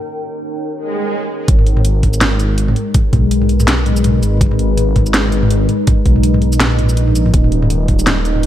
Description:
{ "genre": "half-time drum and bass", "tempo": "164 BPM", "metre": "4/4", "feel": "swing 58% on 16ths, half-time", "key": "G# harmonic minor", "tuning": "A4 = 435 Hz", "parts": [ { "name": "deep dark ambient pad", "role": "sustained chords", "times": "0.0-8.5 s", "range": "G#3 to G5", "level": "-19 LUFS", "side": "left 2 dB", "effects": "chorus, built-in reverb, sidechain pumping" }, { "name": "swell", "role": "sound effects", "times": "0.8-1.5 s", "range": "none", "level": "-23 LUFS", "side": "right 3 dB", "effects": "none" }, { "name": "dark detuned saw bass", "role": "bass", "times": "1.5-8.5 s", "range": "D#1 to B1", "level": "-14 LUFS", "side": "equal", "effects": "tube saturation" }, { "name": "drum and bass drum kit", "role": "drums", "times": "1.5-8.5 s", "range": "hi-hat, shaker, snare drum, toms", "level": "-17 LUFS", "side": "equal", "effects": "overdrive" }, { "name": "electronic kick drum", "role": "drums", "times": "1.5-8.0 s", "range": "none", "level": "-13 LUFS", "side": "equal", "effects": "overdrive" } ], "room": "light reverb, digital ambience", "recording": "dark, warm production", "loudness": "-11 LUFS", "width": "side -12 dB against mid", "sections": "0.0-1.5 A section; 1.5-8.5 B section", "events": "break 0.0-1.5; swell 0.8-1.5; drop 1.5-8.5", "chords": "0.0 D#; 1.5 G#m; 7.3 D#" }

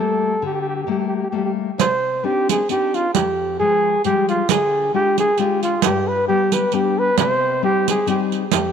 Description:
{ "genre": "italian folk, Italian serenade", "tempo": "134 BPM", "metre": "3/4", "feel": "swing 55% on 8ths", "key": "C harmonic minor", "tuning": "A4 = 436 Hz", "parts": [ { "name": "breathy flugelhorn", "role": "melody", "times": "0.0-8.7 s", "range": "F4 to C5", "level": "-19 LUFS", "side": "right 1 dB", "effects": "none" }, { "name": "nylon-string guitar", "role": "accompaniment", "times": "0.0-8.7 s", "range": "F2 to F4", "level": "-23 LUFS", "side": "left 10 dB", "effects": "none" }, { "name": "riq", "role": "percussion", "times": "1.8-8.7 s", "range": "none", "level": "-22 LUFS", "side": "right 14 dB", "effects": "none" } ], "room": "moderate plate reverb, RT60 3.3 s", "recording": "1960s-style stereo with parts hard left and right", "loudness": "-16 LUFS", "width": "side -7 dB against mid", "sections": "0.0-1.8 A section; 1.8-8.7 B section", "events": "none", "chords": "0.0 Gmadd9; 1.8 Cmadd9; 3.1 Fmadd9; 4.5 Ddim; 5.8 G; 7.2 Cm" }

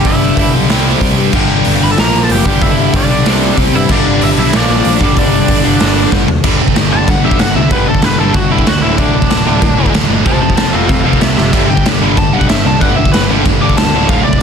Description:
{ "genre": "punk rock", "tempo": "188 BPM", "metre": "4/4", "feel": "straight", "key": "unclear", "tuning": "A4 = 440 Hz", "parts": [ { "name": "biting lead guitar", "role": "melody", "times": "0.0-14.4 s", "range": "D4 to D6", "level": "-17 LUFS", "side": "equal", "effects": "overdrive" }, { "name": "distorted electric guitar", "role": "riff", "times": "0.0-14.4 s", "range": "D2 to C4", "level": "-18 LUFS", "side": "left 13 dB", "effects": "overdrive" }, { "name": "distorted electric guitar", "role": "riff", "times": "0.0-14.4 s", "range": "D2 to C4", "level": "-18 LUFS", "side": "right 14 dB", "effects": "overdrive" }, { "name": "distorted electric guitar", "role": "riff", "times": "0.0-14.4 s", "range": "D2 to C4", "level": "-19 LUFS", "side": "right 2 dB", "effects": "overdrive" }, { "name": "raw garage drum kit", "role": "drums", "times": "0.0-14.4 s", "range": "crash cymbal, hi-hat, kick drum, snare drum, toms", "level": "-13 LUFS", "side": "equal", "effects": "none" }, { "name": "picked electric bass", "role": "bass", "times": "0.1-14.4 s", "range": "D1 to G2", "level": "-17 LUFS", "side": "equal", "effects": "none" } ], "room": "little or no reverb", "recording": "dense, heavily limited modern master", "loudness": "-9 LUFS", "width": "side -7 dB against mid", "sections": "0.0-6.4 A section; 6.4-14.4 B section", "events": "half time 0.0-6.4; drum fill 6.1-6.4, 11.4; lead electric guitar solo 6.4-14.4", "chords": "0.0 G; 0.7 C5; 1.3 G; 2.0 Bb5; 2.5 G; 3.3 C; 3.9 G; 4.5 Bb; 5.0 G5; 8.8 D5; 10.3 F; 11.5 G5" }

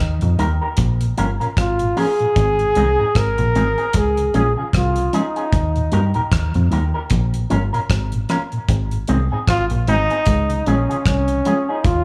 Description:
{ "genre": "roots reggae", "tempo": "76 BPM", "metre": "4/4", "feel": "swing 57% on 16ths", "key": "Ab major", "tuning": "A4 = 440 Hz", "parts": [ { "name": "bright trombone", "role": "melody", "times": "0.0-12.0 s", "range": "Db4 to Bb4", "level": "-22 LUFS", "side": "equal", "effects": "dub echo" }, { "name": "deep dub fingered electric bass", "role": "bass", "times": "0.0-12.0 s", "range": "G1 to G2", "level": "-21 LUFS", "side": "equal", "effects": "none" }, { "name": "mellow tonewheel organ", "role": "accompaniment", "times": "0.2-11.5 s", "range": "Eb2 to Eb4", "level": "-26 LUFS", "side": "equal", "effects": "slow rotary speaker" }, { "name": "damped 70s drum kit", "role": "drums", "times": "0.2-12.0 s", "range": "hi-hat, kick drum, rim click", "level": "-23 LUFS", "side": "equal", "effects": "none" }, { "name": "electric guitar with an envelope filter", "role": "accompaniment", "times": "0.4-11.8 s", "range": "C4 to Bb4", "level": "-29 LUFS", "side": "equal", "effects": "tube saturation, lush chorus, dub echo" } ], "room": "light reverb, studio reverb", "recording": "none", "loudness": "-18 LUFS", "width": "mono", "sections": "0.0-12.0 A section", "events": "none", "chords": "0.0 Eb; 0.8 Bbm; 2.4 Ab; 3.9 Db; 5.5 Eb; 7.1 Bbm; 8.7 Ab; 10.3 Db" }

